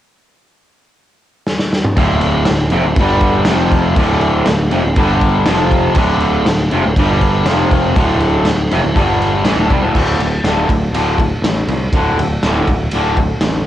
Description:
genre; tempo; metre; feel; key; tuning
garage rock duo or trio; 120 BPM; 4/4; straight; D minor; A4 = 440 Hz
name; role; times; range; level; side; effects
raw garage drum kit; drums; 1.5-13.5 s; crash cymbal, kick drum, ride cymbal, snare drum, toms; -16 LUFS; equal; none
raw garage guitar; riff; 2.0-13.7 s; D2 to G3; -15 LUFS; equal; overdrive, cassette tape
overdriven picked electric bass; bass; 2.0-13.6 s; D1 to C2; -18 LUFS; equal; none
room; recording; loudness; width
light reverb; home recording on cassette; -12 LUFS; side -12 dB against mid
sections
0.0-2.0 A section; 2.0-10.0 B section; 10.0-13.7 C section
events
drum fill 1.5-2.0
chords
0.0 N.C.; 2.0 Dm; 3.0 G5; 3.5 F5; 4.0 Dm; 5.0 G5; 5.5 F5; 6.0 Dm; 7.0 G5; 7.5 F5; 8.0 Dm; 9.0 G5; 9.5 D5

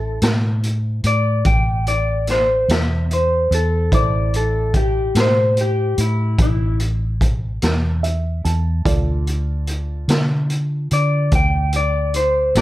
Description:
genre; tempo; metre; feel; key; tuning
slow blues; 49 BPM (dotted quarters); 12/8; straight; A minor; A4 = 436 Hz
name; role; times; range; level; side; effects
electric guitar through a small old amp; melody; 0.0-12.6 s; E4 to G5; -19 LUFS; left 1 dB; spring reverb
warm upright piano; accompaniment; 0.0-12.6 s; E4 to A5; -30 LUFS; right 6 dB; none
vintage muted fingered electric bass; bass; 0.0-12.6 s; A1 to D3; -19 LUFS; equal; none
raw garage drum kit; drums; 0.2-12.6 s; hi-hat, kick drum, snare drum; -20 LUFS; equal; none
room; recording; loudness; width
little or no reverb; dark, warm production; -16 LUFS; side -16 dB against mid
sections
0.0-12.6 A section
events
clean electric guitar solo 0.0-12.6; upright piano fill 7.6-8.9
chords
0.0 Am; 8.9 Dm

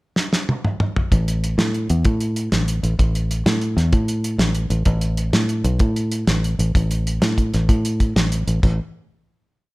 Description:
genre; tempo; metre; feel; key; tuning
highlife guitar band; 128 BPM (dotted quarters); 12/8; straight; unclear; A4 = 441 Hz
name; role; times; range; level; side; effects
cloth-damped thuddy drum kit; drums; 0.2-8.7 s; crash cymbal, hi-hat, kick drum, snare drum, toms; -20 LUFS; equal; none
fingered electric bass; bass; 1.1-8.8 s; A1 to A2; -19 LUFS; equal; none
room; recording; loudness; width
light reverb; none; -17 LUFS; side -22 dB against mid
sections
0.0-1.1 pickup bar; 1.1-8.6 A section; 8.6-9.7 final note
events
drum fill 0.2-1.1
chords
none

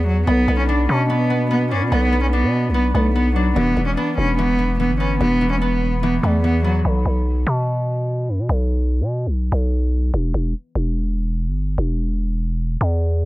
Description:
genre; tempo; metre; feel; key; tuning
hip hop, drill; 146 BPM; 4/4; half-time; B minor; A4 = 440 Hz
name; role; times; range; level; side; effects
dark cello; melody; 0.0-6.8 s; F#3 to D4; -20 LUFS; right 1 dB; low-pass filter, tape echo
growling 808-style bass; bass; 0.0-13.3 s; E1 to B2; -19 LUFS; equal; none
concert harp; accompaniment; 0.3-9.8 s; E3 to D4; -24 LUFS; left 2 dB; low-pass filter
room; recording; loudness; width
small room ambience; echo-heavy mix; -17 LUFS; side -18 dB against mid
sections
0.0-6.8 A section; 6.8-13.3 B section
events
break 6.8-13.3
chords
0.3 Bm; 3.6 E5; 6.8 B5; 10.1 N.C.

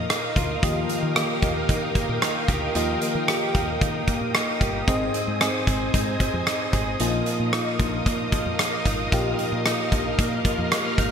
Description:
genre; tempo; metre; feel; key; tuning
1980s-style pop; 113 BPM; 4/4; straight; Eb major; A4 = 440 Hz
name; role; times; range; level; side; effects
FM electric piano with soft pad layer; accompaniment; 0.0-11.1 s; Ab2 to Eb5; -28 LUFS; left 2 dB; chorus
string machine, violas; sustained chords; 0.0-11.1 s; Bb4 to F6; -28 LUFS; equal; ensemble chorus
direct-recorded clean electric guitar; riff; 0.0-11.1 s; Eb3 to Ab4; -32 LUFS; right 3 dB; analog chorus, ping-pong delay
woody fretless electric bass; bass; 0.0-11.1 s; G1 to Eb3; -30 LUFS; equal; none
big rock drum kit; drums; 0.1-11.1 s; hi-hat, kick drum, rim click; -25 LUFS; equal; gated reverb
room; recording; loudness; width
moderate lush hall reverb, RT60 2.7 s; bright 1980s-style digital production; -21 LUFS; side -7 dB against mid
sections
0.0-11.1 A section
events
none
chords
0.0 Bbsus4; 0.6 Ebadd9; 4.9 Ab; 7.0 Bbsus4

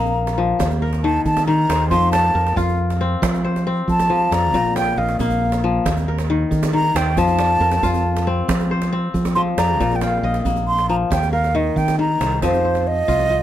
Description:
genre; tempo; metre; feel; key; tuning
west african traditional, West African string and xylophone music; 91 BPM (dotted quarters); 12/8; straight; F mixolydian; A4 = 440 Hz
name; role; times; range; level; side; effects
mellow hollow silver concert flute; melody; 0.0-13.4 s; C5 to C6; -20 LUFS; right 2 dB; none
kora; arpeggios; 0.0-13.4 s; Bb2 to G5; -22 LUFS; left 4 dB; none
fingered electric bass; bass; 0.0-13.4 s; Bb1 to F3; -21 LUFS; right 1 dB; none
djembe; percussion; 0.1-13.3 s; none; -26 LUFS; right 3 dB; none
room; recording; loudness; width
little or no reverb; close, detailed microphones; -16 LUFS; side -12 dB against mid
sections
0.0-12.4 A section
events
flute solo 0.0-12.4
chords
0.0 Bb5; 0.6 Eb5; 1.9 F; 4.5 Bb; 5.9 Eb5; 7.2 F; 9.8 Bb; 11.1 Eb5; 12.4 F5

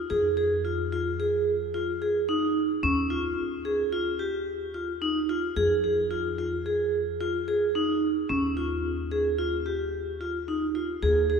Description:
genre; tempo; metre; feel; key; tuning
contemporary instrumental, chamber music in an uneven meter; 110 BPM; 5/4; straight; F minor; A4 = 440 Hz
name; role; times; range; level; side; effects
upright bass; bass; 0.0-11.4 s; Eb2 to F2; -35 LUFS; left 2 dB; none
vibraphone with hard mallets; arpeggios; 0.1-11.4 s; Db4 to Ab4; -25 LUFS; right 1 dB; none
room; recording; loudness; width
wet church reverb, RT60 3.5 s; recorded in a church or concert hall; -25 LUFS; side -6 dB against mid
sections
0.0-11.4 A section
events
none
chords
0.1 Fm; 2.8 Ebsus2; 5.6 Fm; 8.3 Ebsus4

